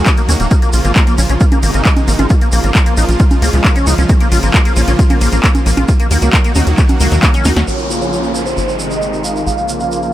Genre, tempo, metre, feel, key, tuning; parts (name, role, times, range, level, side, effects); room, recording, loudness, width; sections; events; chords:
uplifting trance; 134 BPM; 4/4; straight; Bb minor; A4 = 440 Hz
supersaw pad; sustained chords; 0.0-10.1 s; C3 to Gb4; -19 LUFS; right 1 dB; sidechain pumping, low-pass filter
liquid acid bass; arpeggios; 0.0-7.6 s; Bb2 to F4; -21 LUFS; left 2 dB; analog chorus, sidechain pumping, dub echo
tight sequencer bass; bass; 0.0-10.1 s; Eb1 to Eb2; -15 LUFS; equal; sidechain pumping
electronic kick drum; drums; 0.1-7.3 s; -11 LUFS; equal; overdrive
punchy analog drum machine; drums; 0.1-7.8 s; congas, crash cymbal, handclaps, hi-hat, snare drum; -18 LUFS; equal; overdrive, low-pass filter on hats, low-pass filter on snare, low-pass filter on perc, low-pass filter on cymbals
tube shaker; percussion; 0.1-10.1 s; -25 LUFS; right 3 dB
dense compressed supersaw; melody; 7.7-10.1 s; C5 to F5; -20 LUFS; right 2 dB; sidechain pumping, low-pass filter, tape echo
downlifter; sound effects; 7.7-10.1 s; -23 LUFS; left 1 dB
little or no reverb; -10 LUFS; side -14 dB against mid
0.0-7.7 A section; 7.7-10.1 B section
filter sweep on acid bass 0.0-7.7; drum fill 7.5; filter sweep on supersaw synth 7.7-10.1
0.0 Ebm; 0.5 Bbm; 1.4 Ab; 2.3 Bbm; 3.2 Db; 4.1 Bbm; 5.9 Ebm; 7.7 Bbm; 8.6 Ab; 9.5 Bbm